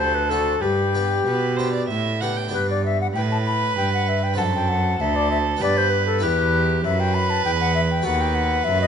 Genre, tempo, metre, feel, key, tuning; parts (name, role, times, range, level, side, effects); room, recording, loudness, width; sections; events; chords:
classical, baroque-style sonata movement with continuo; 98 BPM; 3/4; straight; G major; A4 = 440 Hz
bright baroque flute; melody; 0.0-8.9 s; G4 to B5; -23 LUFS; left 7 dB
rich violin; second line; 0.0-8.9 s; G4 to G5; -25 LUFS; right 7 dB
harpsichord; accompaniment; 0.0-8.9 s; D2 to A4; -29 LUFS; equal
rich cello; bass; 0.0-8.9 s; D2 to B2; -23 LUFS; right 2 dB
moderate recital hall reverb, RT60 1.4 s; nothing above 10.5 kHz; -19 LUFS; side -7 dB against mid
0.0-2.5 A section; 2.5-8.9 B section
0.0 D7; 0.6 G; 4.4 D7/F#; 5.6 G; 6.2 Em; 8.1 B7/D#